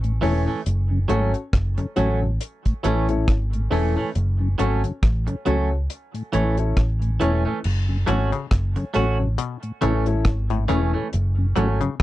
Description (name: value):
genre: roots reggae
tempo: 69 BPM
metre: 4/4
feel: swing 58% on 16ths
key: F# minor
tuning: A4 = 439 Hz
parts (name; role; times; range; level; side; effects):
- mellow tonewheel organ; accompaniment; 0.0-11.9 s; F#2 to C#4; -27 LUFS; left 1 dB; chorus vibrato, slow rotary speaker
- vintage muted fingered electric bass; bass; 0.0-12.0 s; E1 to C#2; -22 LUFS; equal; none
- deep reggae drum kit; drums; 0.0-12.0 s; crash cymbal, hi-hat, kick drum, rim click; -22 LUFS; equal; vintage 12-bit sampler grit
- clean electric guitar; accompaniment; 0.2-11.8 s; E3 to F#4; -27 LUFS; right 6 dB; none
- warm baby grand piano; stabs; 0.2-11.8 s; C#4 to C#5; -26 LUFS; left 4 dB; none
- muted clav; arpeggios; 8.1-12.0 s; A2 to E3; -28 LUFS; left 9 dB; none
room: little or no reverb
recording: dry, close 1970s-style studio recording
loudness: -20 LUFS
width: side -15 dB against mid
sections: 0.0-7.6 A section; 7.6-12.0 A section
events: none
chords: 0.0 A; 0.7 F#m; 2.4 A; 4.1 F#m; 5.9 A; 7.6 F#m; 9.4 A; 11.1 F#m